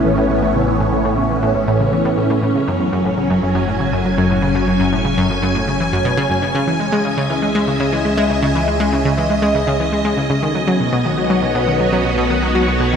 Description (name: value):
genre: ambient, sequencer-driven space music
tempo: 120 BPM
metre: 4/4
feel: straight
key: unclear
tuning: A4 = 440 Hz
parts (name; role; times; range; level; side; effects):
- phased string machine; sustained chords; 0.0-13.0 s; A2 to G#5; -18 LUFS; equal; ensemble chorus, phaser, shimmer reverb
- vibraphone with soft mallets; arpeggios; 0.0-13.0 s; G#3 to A4; -30 LUFS; right 2 dB; none
- analog pluck; riff; 0.0-13.0 s; F#2 to G#3; -18 LUFS; equal; chorus, ping-pong delay, shimmer reverb
- analog drone; bass; 0.0-13.0 s; F#1 to C#2; -26 LUFS; equal; chorus
room: wet cathedral reverb, RT60 5.6 s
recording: in a vast, echoing space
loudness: -14 LUFS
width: side -7 dB against mid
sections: 0.0-13.0 A section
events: none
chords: 0.0 A; 2.4 F#m; 6.4 C#madd9; 10.4 Badd9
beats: | 0.43 0.93 1.43 1.93 | 2.43 2.93 3.43 3.93 | 4.43 4.93 5.43 5.93 | 6.43 6.93 7.43 7.93 | 8.43 8.93 9.43 9.93 | 10.43 10.93 11.43 11.93 | 12.43 12.93